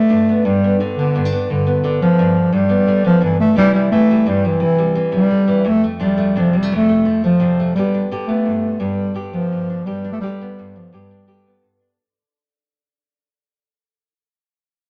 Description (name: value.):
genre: highlife.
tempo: 115 BPM (dotted quarters).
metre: 12/8.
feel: straight.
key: G mixolydian.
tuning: A4 = 440 Hz.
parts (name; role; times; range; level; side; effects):
dark bass clarinet; melody; 0.0-11.6 s; D3 to A3; -17 LUFS; equal; none.
nylon-string guitar; accompaniment; 0.0-14.1 s; F2 to G4; -24 LUFS; equal; none.
room: wet studio reverb, RT60 1.0 s.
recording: none.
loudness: -16 LUFS.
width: mono.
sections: 0.0-7.7 A section; 7.7-12.0 B section.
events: fade-out 7.7-12.0.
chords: 0.0 G; 3.6 C; 5.7 F6; 7.7 G.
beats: 0.44 0.96 | 1.48 2.00 2.52 3.04 | 3.57 4.09 4.61 5.13 | 5.65 6.18 6.70 7.22 | 7.75 8.27 8.80 9.32 | 9.85 10.38 10.91 11.44.